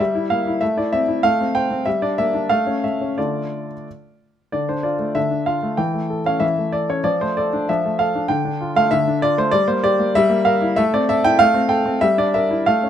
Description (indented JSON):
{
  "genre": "classical-period piano sonatina",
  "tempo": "96 BPM",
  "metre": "2/4",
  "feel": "rubato",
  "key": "D minor",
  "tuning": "A4 = 440 Hz",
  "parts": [
    { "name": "clear grand piano", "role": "solo", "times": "0.0-12.9 s", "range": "D3 to G5", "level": "-16 LUFS", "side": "equal", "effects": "none" }
  ],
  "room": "light reverb",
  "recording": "close, detailed microphones",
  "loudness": "-16 LUFS",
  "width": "side -10 dB against mid",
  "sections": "0.0-4.5 A section; 4.5-12.9 B section",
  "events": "none",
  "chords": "0.0 Edim/G; 0.6 Am; 1.2 F/A; 1.9 Em7b5/G; 2.5 A; 3.2 Dm; 5.8 A/E; 7.1 Dm/F; 8.3 Dm; 9.5 Gm; 10.2 Edim/G; 10.8 Am; 11.4 F/A; 12.0 Em7b5/G"
}